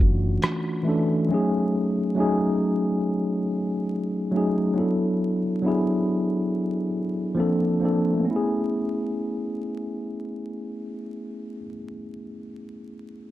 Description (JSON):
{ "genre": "lo-fi hip hop", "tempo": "69 BPM", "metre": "4/4", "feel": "swing 64% on 16ths", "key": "A major", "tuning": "A4 = 439 Hz", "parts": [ { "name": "tine electric piano", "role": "accompaniment", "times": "0.0-13.3 s", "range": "E3 to A4", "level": "-23 LUFS", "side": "equal", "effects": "medium stereo tremolo" }, { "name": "lo-fi sampler-style drum kit", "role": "drums", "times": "0.4-0.7 s", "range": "hi-hat, rim click", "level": "-22 LUFS", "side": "equal", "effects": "none" } ], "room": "light reverb", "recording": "dark, warm production, vinyl crackle", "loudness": "-22 LUFS", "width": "side -14 dB against mid", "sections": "0.0-8.2 A section; 8.2-11.7 B section", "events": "none", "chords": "0.0 Dmaj7; 1.3 F#m69; 4.8 E7sus4; 7.4 Bbmaj9; 8.2 Amaj9", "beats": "0.42 | 1.29 2.16 3.03 3.90 | 4.77 5.64 6.51 7.38 | 8.25 9.12 9.99 10.86" }